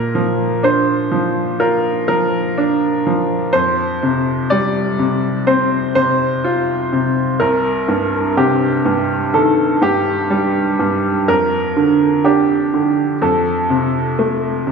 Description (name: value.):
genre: pop.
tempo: 62 BPM.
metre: 4/4.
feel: straight.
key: Bb major.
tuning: A4 = 440 Hz.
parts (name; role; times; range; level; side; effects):
clear concert grand piano; melody; 0.0-14.1 s; G4 to D5; -18 LUFS; right 1 dB; none.
bright upright piano; accompaniment; 0.0-14.7 s; C2 to F4; -16 LUFS; equal; none.
room: moderate concert hall reverb, RT60 1.9 s.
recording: small room ambience.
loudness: -14 LUFS.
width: side -5 dB against mid.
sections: 0.0-14.7 A section.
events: none.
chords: 0.0 Bbadd9; 3.5 Fsus2; 7.4 Cm7; 11.3 Bb/F; 13.2 F.